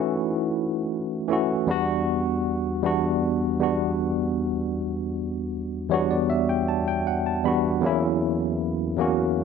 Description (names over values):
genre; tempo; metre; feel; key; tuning
R&B; 78 BPM; 4/4; straight; E dorian; A4 = 440 Hz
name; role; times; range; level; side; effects
tine electric piano; solo; 0.0-9.4 s; E2 to B5; -22 LUFS; equal; medium stereo tremolo
room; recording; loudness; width
light reverb, digital ambience; nothing above 7.7 kHz; -22 LUFS; side -6 dB against mid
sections
0.0-9.4 A section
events
tine electric piano fill 5.5-7.8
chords
0.0 A6/E; 1.7 Em9; 7.8 F#7/E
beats
0.15 0.92 | 1.69 2.46 3.23 3.99 | 4.76 5.53 6.30 7.07 | 7.84 8.61 9.38